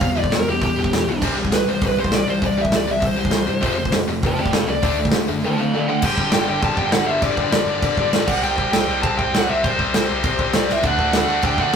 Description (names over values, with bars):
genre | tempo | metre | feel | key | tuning
punk rock | 200 BPM | 4/4 | straight | unclear | A4 = 441 Hz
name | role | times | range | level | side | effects
bluesy overdriven lead guitar | melody | 0.0-11.8 s | G4 to A5 | -22 LUFS | equal | distortion
tight distorted guitar | riff | 0.0-11.8 s | E2 to D4 | -22 LUFS | left 4 dB | distortion
tight distorted guitar | riff | 0.0-6.0, 10.8-11.7 s | C3 to D5 | -29 LUFS | right 9 dB | distortion
picked electric bass | bass | 0.0-11.8 s | E1 to G2 | -30 LUFS | right 1 dB | none
big rock drum kit | drums | 0.0-11.8 s | crash cymbal, hi-hat, kick drum, snare drum | -21 LUFS | right 1 dB | none
room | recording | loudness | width
moderate studio reverb, RT60 0.6 s | rough rehearsal-room recording, tube saturation | -17 LUFS | side -7 dB against mid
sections
0.0-6.0 A section; 6.0-11.8 B section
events
lead electric guitar solo 0.0-6.0; drum fill 10.7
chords
0.0 Em; 1.2 C; 3.6 F; 4.8 D5; 6.0 G5; 8.3 C5; 10.8 D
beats
| 0.02 0.32 0.62 0.92 | 1.22 1.52 1.82 2.12 | 2.42 2.72 3.02 3.33 | 3.63 3.93 4.23 4.53 | 4.83 5.13 5.43 5.74 | 6.04 6.34 6.64 6.94 | 7.24 7.54 7.84 8.14 | 8.44 8.74 9.04 9.34 | 9.64 9.94 10.24 10.54 | 10.84 11.14 11.44 11.74